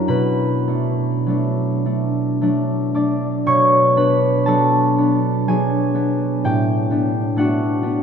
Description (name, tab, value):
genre	classical, solo harp piece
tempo	50-66 BPM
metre	3/4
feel	rubato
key	B minor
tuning	A4 = 439 Hz
part	concert harp	solo	0.0-8.0 s	F#2 to E6	-16 LUFS	equal	none
room	wet cathedral reverb, RT60 5.2 s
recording	minimal, uncompressed stereo recording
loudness	-16 LUFS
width	side -7 dB against mid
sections	0.0-3.5 A section; 3.5-8.0 A section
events	none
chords	0.1 Bm7; 3.5 Bm9; 6.4 A9sus4